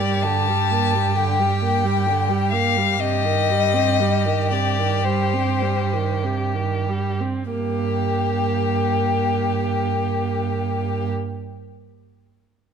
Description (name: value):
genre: classical, slow romantic movement for string quartet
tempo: 45-67 BPM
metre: 4/4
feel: rubato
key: G minor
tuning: A4 = 441 Hz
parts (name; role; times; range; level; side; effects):
- warm violin; melody; 0.0-11.1 s; G4 to A5; -24 LUFS; left 10 dB; none
- rich violin; second line; 0.0-11.1 s; G4; -26 LUFS; left 3 dB; none
- rich viola; accompaniment; 0.0-11.1 s; C3 to C4; -25 LUFS; right 2 dB; none
- rich cello; bass; 0.0-11.1 s; G2; -24 LUFS; right 6 dB; none
room: moderate recital hall reverb, RT60 1.8 s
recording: close, detailed microphones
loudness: -19 LUFS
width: side -7 dB against mid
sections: 0.0-7.5 A section; 7.5-12.4 B section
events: slowing down 0.0-7.5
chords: 0.0 Gm; 3.0 Cm/G; 7.5 Gm